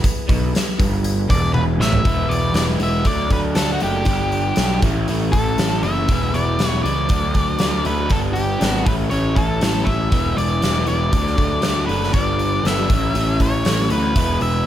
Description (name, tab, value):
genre	blues rock power trio and southern rock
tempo	119 BPM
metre	4/4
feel	straight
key	unclear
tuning	A4 = 439 Hz
part	overdriven tonewheel organ	sustained chords	0.0-2.0 s	E3 to G#4	-32 LUFS	right 3 dB	slow rotary speaker, chorus vibrato
part	crunchy overdriven guitar	riff	0.0-14.7 s	E2 to E4	-23 LUFS	equal	none
part	fuzz picked electric bass	bass	0.0-14.6 s	E1 to D2	-22 LUFS	equal	overdrive
part	big rock drum kit	drums	0.0-14.5 s	hi-hat, kick drum, snare drum, toms	-21 LUFS	equal	none
part	octave-fuzz lead guitar	melody	1.3-14.7 s	F#4 to E5	-23 LUFS	equal	distortion, plate reverb
room	light reverb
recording	none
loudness	-16 LUFS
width	side -11 dB against mid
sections	0.0-2.0 A section; 2.0-14.7 B section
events	drum fill 1.5-2.0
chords	0.0 E; 3.1 D; 4.1 G; 4.8 A; 6.1 E; 7.1 D; 8.1 G; 8.9 A; 10.1 E; 11.1 D; 12.1 G; 12.9 A; 14.2 E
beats	| 0.04 0.54 1.04 1.54 | 2.05 2.55 3.06 3.56 | 4.07 4.57 5.08 5.58 | 6.08 6.59 7.09 7.60 | 8.10 8.61 9.11 9.62 | 10.12 10.62 11.13 11.63 | 12.14 12.64 13.14 13.65 | 14.15 14.66